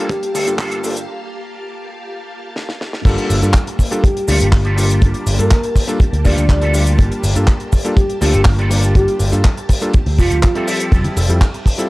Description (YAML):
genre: nu-disco, nu disco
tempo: 122 BPM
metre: 4/4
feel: straight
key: unclear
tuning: A4 = 440 Hz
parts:
  - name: clear electric grand piano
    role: accompaniment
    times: 0.0-11.9 s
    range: F3 to E5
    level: -22 LUFS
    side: left 1 dB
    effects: sidechain pumping
  - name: string machine, full ensemble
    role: sustained chords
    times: 0.0-11.9 s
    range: Bb3 to A5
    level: -28 LUFS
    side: equal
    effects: ensemble chorus, sidechain pumping
  - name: electric guitar with an envelope filter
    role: riff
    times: 0.0-11.8 s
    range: Bb3 to A4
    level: -26 LUFS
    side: right 2 dB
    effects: ensemble chorus
  - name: soft octave-layered synth lead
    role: melody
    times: 0.1-0.5, 4.0-10.7 s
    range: F4 to D5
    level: -22 LUFS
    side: equal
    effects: chorus, analog delay
  - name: damped 70s drum kit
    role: drums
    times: 0.1-11.9 s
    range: cabasa, crash cymbal, handclaps, hi-hat, ride cymbal, snare drum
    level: -23 LUFS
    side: left 1 dB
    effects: studio reverb
  - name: kick drum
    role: drums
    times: 0.1-11.8 s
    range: none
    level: -13 LUFS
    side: equal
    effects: studio reverb
  - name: picked electric bass with an envelope filter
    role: bass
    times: 0.3-11.4 s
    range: F1 to G2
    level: -16 LUFS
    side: equal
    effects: transformer saturation, sidechain pumping
  - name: congas and bongos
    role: percussion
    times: 10.9-11.9 s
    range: none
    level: -25 LUFS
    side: equal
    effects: none
room: little or no reverb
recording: dry, gritty hardware recording, transformer saturation, cassette tape, high-pass filter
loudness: -12 LUFS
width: side -20 dB against mid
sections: 0.0-3.1 A section; 3.1-11.9 B section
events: build-up 0.0-3.1; break 1.1-3.1; drum fill 2.6-3.1; drop 3.1-11.9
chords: 0.0 Gm9; 3.1 Fmaj9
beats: 0.10 0.59 | 1.09 1.58 2.07 2.56 | 3.05 3.54 4.04 4.53 | 5.02 5.51 6.00 6.50 | 6.99 7.48 7.97 8.46 | 8.96 9.45 9.94 10.43 | 10.92 11.41